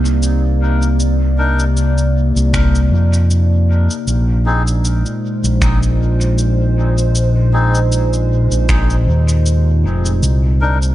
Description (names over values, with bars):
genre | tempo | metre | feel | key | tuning
ambient dub | 78 BPM | 4/4 | swing 55% on 16ths | unclear | A4 = 440 Hz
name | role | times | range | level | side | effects
warbly tape-like pad | sustained chords | 0.0-10.9 s | Bb2 to D5 | -20 LUFS | equal | chorus, built-in reverb
overdriven fingered electric bass | bass | 0.0-10.9 s | F1 to F2 | -13 LUFS | equal | none
electronic cabasa and finger snaps | drums | 0.1-10.9 s | none | -24 LUFS | equal | studio reverb, dub echo
melodica | stabs | 1.4-10.8 s | C4 to Bb4 | -24 LUFS | left 3 dB | dub echo
electronic kick drum | drums | 2.5-8.9 s | none | -18 LUFS | equal | overdrive, studio reverb
room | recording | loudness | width
little or no reverb | nothing above 10.6 kHz | -12 LUFS | side -14 dB against mid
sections
0.0-10.9 A section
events
none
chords
0.0 Cm9; 4.1 Bb9sus4; 10.2 Cm9